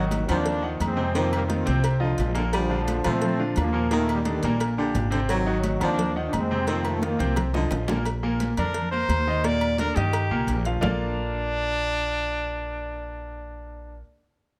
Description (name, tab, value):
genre	latin, salsa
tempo	174 BPM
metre	4/4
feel	straight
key	Bb major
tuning	A4 = 440 Hz
part	brilliant trombone section	melody	0.0-7.4 s	D3 to D4	-31 LUFS	equal	none
part	breathy baritone saxophone	second line	0.0-8.0 s	D3 to G3	-33 LUFS	equal	none
part	clear concert grand piano	accompaniment	0.0-14.0 s	Bb2 to Bb5	-31 LUFS	equal	none
part	upright bass	bass	0.0-14.0 s	Ab1 to Bb2	-30 LUFS	equal	none
part	agogo bells and timbales	percussion	0.1-10.9 s	none	-37 LUFS	equal	none
part	congas	percussion	0.1-10.9 s	none	-36 LUFS	equal	none
part	cowbell and bongos	percussion	0.1-10.9 s	none	-38 LUFS	equal	none
part	clear trumpet	melody	8.6-14.0 s	D4 to D5	-30 LUFS	equal	none
room	light reverb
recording	close, detailed microphones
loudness	-25 LUFS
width	mono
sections	0.0-8.1 A section; 8.1-10.8 B section; 10.8-13.6 C section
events	drum fill 6.7-8.1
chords	0.0 Ab7; 1.2 F7sus4; 2.5 Bbmaj7; 3.9 Ebmaj7; 5.3 Ab7; 6.7 F7sus4; 8.1 Bb; 9.4 Ebmaj7; 10.8 Bbmaj7